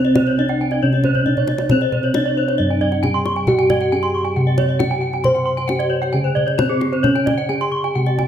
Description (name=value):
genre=Balinese gamelan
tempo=136 BPM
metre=4/4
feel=straight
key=C pelog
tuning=A4 = 439 Hz
part: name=gamelan-type bronze metallophone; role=melody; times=0.0-8.3 s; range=C4 to C5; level=-22 LUFS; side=equal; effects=slapback echo
part: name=gamelan-type bronze metallophone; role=arpeggios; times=0.0-8.2 s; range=G4-45c to Db6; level=-24 LUFS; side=left 5 dB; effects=none
part: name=gamelan-type bossed gongs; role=bass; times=0.0-8.3 s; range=G2-45c to C5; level=-19 LUFS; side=equal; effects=none
part: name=kendang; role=percussion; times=0.0-8.3 s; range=none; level=-24 LUFS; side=left 2 dB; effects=none
part: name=gamelan-type bronze metallophone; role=arpeggios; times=0.2-8.3 s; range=Ab4-40c to C6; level=-24 LUFS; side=right 5 dB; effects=none
room=moderate recital hall reverb, RT60 1.6 s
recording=none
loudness=-15 LUFS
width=side -9 dB against mid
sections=0.0-8.3 A section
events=drum fill 1.2-1.7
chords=none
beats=0.38 0.82 1.27 | 1.71 2.15 2.59 3.03 | 3.48 3.92 4.36 4.80 | 5.25 5.69 6.13 6.58 | 7.04 7.49 7.95